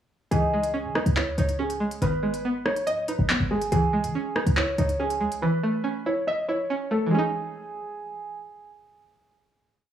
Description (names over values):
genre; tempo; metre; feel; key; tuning
hip hop, drill; 141 BPM; 4/4; half-time; C# minor; A4 = 440 Hz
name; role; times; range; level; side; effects
dark concert grand piano; melody; 0.3-8.4 s; G#4 to D#5; -28 LUFS; right 1 dB; low-pass filter, digital delay
soft octave-layered synth lead; second line; 0.3-2.4 s; B4 to D#5; -31 LUFS; left 4 dB; chorus, tremolo, digital delay
string-like resonator pluck; accompaniment; 0.3-9.9 s; D#3 to E5; -27 LUFS; right 2 dB; chorus, low-pass filter
short 808-style bass; bass; 0.3-5.4 s; G#1 to E3; -27 LUFS; equal; none
drill drum kit; drums; 0.3-5.4 s; handclaps, hi-hat, rim click; -28 LUFS; left 1 dB; none
room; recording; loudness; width
light reverb; studio ambience; -23 LUFS; side -10 dB against mid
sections
0.3-7.1 hook; 7.1-9.9 final chord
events
none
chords
0.3 C#madd9; 2.0 G#m; 3.7 C#madd9; 5.4 A; 7.1 C#madd9